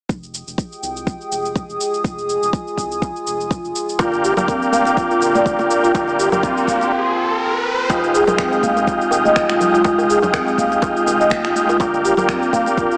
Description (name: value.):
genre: afro house.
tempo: 123 BPM.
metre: 4/4.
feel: swing 55% on 16ths.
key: F dorian.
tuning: A4 = 438 Hz.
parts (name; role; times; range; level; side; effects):
dark analog pad; sustained chords; 0.8-13.0 s; Ab3 to Eb6; -26 LUFS; equal; chorus, sidechain pumping.
round analog bass; bass; 0.1-12.9 s; D1 to C2; -41 LUFS; equal; sidechain pumping.
electronic kick drum; drums; 0.1-12.9 s; none; -26 LUFS; equal; none.
electronic shaker and finger snaps; drums; 0.1-13.0 s; none; -29 LUFS; equal; none.
marimba with soft mallets; arpeggios; 4.0-13.0 s; C4 to F5; -21 LUFS; equal; sidechain pumping, digital delay.
tonewheel organ; stabs; 4.0-13.0 s; Ab3 to G4; -21 LUFS; equal; chorus vibrato, sidechain pumping, digital delay.
congas; percussion; 4.0-12.8 s; none; -30 LUFS; equal; none.
djembe; percussion; 4.0-12.9 s; none; -29 LUFS; equal; none.
riser; sound effects; 6.0-7.9 s; none; -27 LUFS; equal; none.
room: moderate lush hall reverb, RT60 2.1 s.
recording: small speaker sound.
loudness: -18 LUFS.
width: mono.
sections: 0.1-7.9 A section; 7.9-13.0 B section.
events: filter sweep on analog synth bass 0.1-7.9; riser 6.0-7.9.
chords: 0.1 Fm9; 4.0 Gm7; 7.9 Fm9; 11.8 Gm7.